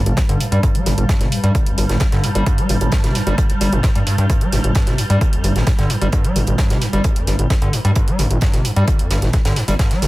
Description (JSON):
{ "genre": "driving peak-time techno", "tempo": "131 BPM", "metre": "4/4", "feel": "straight", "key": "G harmonic minor", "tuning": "A4 = 440 Hz", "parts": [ { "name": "overdriven acid bass", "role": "riff", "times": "0.0-10.1 s", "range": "G1 to G3", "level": "-21 LUFS", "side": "equal", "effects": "distortion, lush chorus, sidechain pumping, analog delay" }, { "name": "swarming drone", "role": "drone", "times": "0.0-10.1 s", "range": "G2 to G3", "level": "-26 LUFS", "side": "equal", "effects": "built-in reverb, sidechain pumping" }, { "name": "gritty driven synth bass", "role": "bass", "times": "0.1-10.1 s", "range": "G1 to G2", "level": "-18 LUFS", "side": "equal", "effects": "sidechain pumping" }, { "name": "electronic hi-hat", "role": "drums", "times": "0.1-10.1 s", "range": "none", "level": "-28 LUFS", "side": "right 1 dB", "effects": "none" }, { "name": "crisp fusion drum kit", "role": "drums", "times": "0.2-10.1 s", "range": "hi-hat, snare drum", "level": "-30 LUFS", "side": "right 2 dB", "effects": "high-pass filter on hats, high-pass filter on snare, high-pass filter on room, analog delay" }, { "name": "electronic kick drum", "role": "drums", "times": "0.2-9.9 s", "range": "none", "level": "-17 LUFS", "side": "equal", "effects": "none" } ], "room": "little or no reverb", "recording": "echo-heavy mix", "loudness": "-14 LUFS", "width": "side -18 dB against mid", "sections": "0.0-10.1 A section", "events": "none", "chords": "none" }